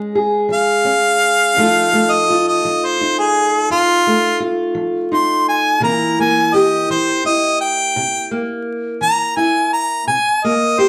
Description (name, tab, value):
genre	blues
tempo	56 BPM (dotted quarters)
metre	12/8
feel	straight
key	unclear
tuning	A4 = 440 Hz
part	fingerpicked steel-string acoustic guitar	accompaniment	0.0-10.9 s	F2 to Ab4	-20 LUFS	equal	none
part	bright harmonica	melody	0.5-10.9 s	F4 to C6	-17 LUFS	equal	none
room	wet studio reverb, RT60 0.6 s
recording	heard from further back in the room, vinyl crackle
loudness	-16 LUFS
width	mono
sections	0.0-10.9 A section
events	none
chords	0.0 Bbm7 (rootless); 1.6 F7; 5.8 C7